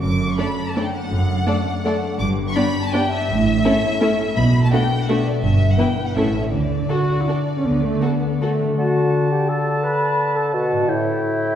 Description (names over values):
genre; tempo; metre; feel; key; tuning
classical; 151-182 BPM; 3/4; rubato; D major; A4 = 435 Hz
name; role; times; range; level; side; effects
rich studio violin section; melody; 0.0-8.6 s; C#5 to D6; -26 LUFS; left 3 dB; none
concert harp; arpeggios; 0.0-11.6 s; F#2 to F#5; -24 LUFS; left 2 dB; none
warm studio cello section; bass; 0.0-8.0 s; F#2 to D3; -24 LUFS; right 3 dB; none
warm studio double bass section; bass; 0.0-7.9 s; F#1 to D2; -23 LUFS; right 2 dB; none
rich studio violin section; second line; 0.4-8.5 s; D4 to D5; -28 LUFS; left 1 dB; none
warm studio viola section; accompaniment; 0.4-8.8 s; E3 to F#4; -23 LUFS; equal; none
mellow cor anglais; second line; 8.8-11.6 s; G5 to A5; -27 LUFS; right 1 dB; none
mellow large flute ensemble; second line; 8.8-11.6 s; E5 to B5; -26 LUFS; equal; none
warm clarinet; second line; 8.8-11.6 s; E4 to B4; -22 LUFS; left 1 dB; none
clear bassoon; accompaniment; 8.8-11.6 s; A2 to D3; -23 LUFS; equal; none
room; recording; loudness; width
wet scoring stage reverb, RT60 1.7 s; heard from further back in the room; -17 LUFS; side -10 dB against mid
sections
0.0-8.8 A section; 8.8-11.6 B section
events
none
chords
0.0 D/F#; 2.2 G; 3.3 A; 4.4 Bm7; 5.4 Em/G; 6.2 A; 6.5 D; 10.9 A7